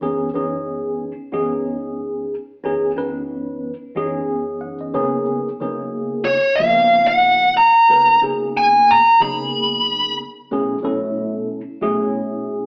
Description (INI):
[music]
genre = jazz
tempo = 92 BPM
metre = 4/4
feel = swing 54% on 16ths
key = unclear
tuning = A4 = 435 Hz
[part]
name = mellow tine electric piano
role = accompaniment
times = 0.0-12.7 s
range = Gb2 to Gb5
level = -24 LUFS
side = equal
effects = phaser
[part]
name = smooth overdriven lead guitar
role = melody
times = 6.2-10.2 s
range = Db5 to Cb6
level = -15 LUFS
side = equal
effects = none
[sound]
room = wet stone room reverb, RT60 1.1 s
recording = band playing live in one room, AM radio sound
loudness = -18 LUFS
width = mono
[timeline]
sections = 0.0-12.7 A section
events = tine electric piano fill 4.3-5.3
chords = 0.0 Gb13sus4; 4.9 Db13sus4; 10.5 B13sus4